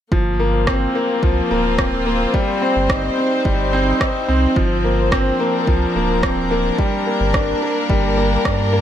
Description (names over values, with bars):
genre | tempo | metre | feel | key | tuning
piano and strings electronica | 108 BPM | 4/4 | straight | unclear | A4 = 441 Hz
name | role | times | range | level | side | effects
rich chamber string section | sustained chords | 0.1-8.8 s | F3 to C5 | -22 LUFS | left 1 dB | sidechain pumping
bright upright piano | riff | 0.1-8.8 s | F3 to Eb4 | -19 LUFS | left 1 dB | tape echo
warm sub bass | bass | 0.1-8.8 s | D1 to G2 | -21 LUFS | right 1 dB | sidechain pumping
electronic kick drum | drums | 0.1-8.6 s | none | -20 LUFS | right 1 dB | overdrive
electronic rim click | drums | 0.7-8.6 s | none | -24 LUFS | right 1 dB | none
room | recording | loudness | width
moderate echo chamber reverb, RT60 1.7 s, digital ambience | none | -15 LUFS | side -10 dB against mid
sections
0.1-8.8 A section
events
none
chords
0.1 Fsus4/G; 2.3 Cm/G; 4.6 Bbadd9/G; 6.8 Gm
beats
| 0.12 0.68 1.23 1.79 | 2.34 2.90 3.45 4.01 | 4.56 5.12 5.67 6.23 | 6.79 7.34 7.90 8.45